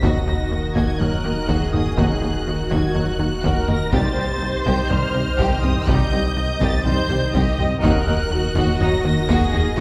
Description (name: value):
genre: cinematic, hybrid orchestral and electronic film score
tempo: 123 BPM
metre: 4/4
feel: straight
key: Eb minor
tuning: A4 = 440 Hz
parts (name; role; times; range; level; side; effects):
- warm symphonic violin section; melody; 0.0-9.8 s; Eb6 to Bb6; -32 LUFS; equal; none
- warm symphonic violin section; second line; 0.0-9.8 s; Gb4 to Eb5; -33 LUFS; equal; none
- rich symphonic viola section; accompaniment; 0.0-9.8 s; Gb4 to Eb5; -29 LUFS; equal; none
- hollow soft pad; sustained chords; 0.0-9.8 s; Eb3 to C5; -31 LUFS; equal; chorus
- mellow French horn section; sustained chords; 0.0-9.8 s; Gb3 to Eb4; -34 LUFS; equal; none
- tight sequenced synth; arpeggios; 0.0-9.8 s; C3 to Eb4; -33 LUFS; equal; none
- plucky analog bass; riff; 0.0-9.8 s; C2 to Eb3; -27 LUFS; equal; none
- rich symphonic cello section; bass; 0.0-9.6 s; C2 to Eb2; -29 LUFS; equal; none
- rich symphonic double bass section; bass; 0.0-9.6 s; C2 to Eb2; -30 LUFS; equal; none
- warm sub bass; bass; 0.0-9.8 s; Eb1 to C2; -32 LUFS; equal; none
- taiko ensemble; drums; 0.0-9.8 s; none; -28 LUFS; equal; none
room: wet concert hall reverb, RT60 2.1 s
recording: heard from further back in the room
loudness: -20 LUFS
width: mono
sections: 0.0-9.8 A section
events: none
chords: 0.0 Ebm; 3.9 Cm; 7.8 Ebm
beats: | 0.03 0.52 1.01 1.50 | 1.98 2.47 2.96 3.45 | 3.93 4.42 4.91 5.40 | 5.88 6.37 6.86 7.35 | 7.84 8.32 8.81 9.30 | 9.79